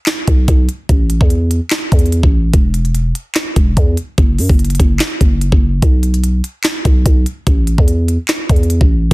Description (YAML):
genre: hip hop, trap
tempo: 146 BPM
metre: 4/4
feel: half-time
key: unclear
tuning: A4 = 443 Hz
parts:
  - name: trap drum kit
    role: drums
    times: 0.1-9.1 s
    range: handclaps, hi-hat, kick drum, snare drum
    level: -12 LUFS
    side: equal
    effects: none
  - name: growling 808-style bass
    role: bass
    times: 0.3-9.1 s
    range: E1 to F#2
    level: -14 LUFS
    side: equal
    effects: none
room: little or no reverb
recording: dense, heavily limited modern master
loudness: -11 LUFS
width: side -21 dB against mid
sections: 0.0-9.1 A section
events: none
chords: none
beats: 0.07 0.48 | 0.89 1.30 1.71 2.12 | 2.54 2.95 3.36 3.77 | 4.18 4.59 5.00 5.41 | 5.82 6.24 6.65 7.06 | 7.47 7.88 8.29 8.70 | 9.11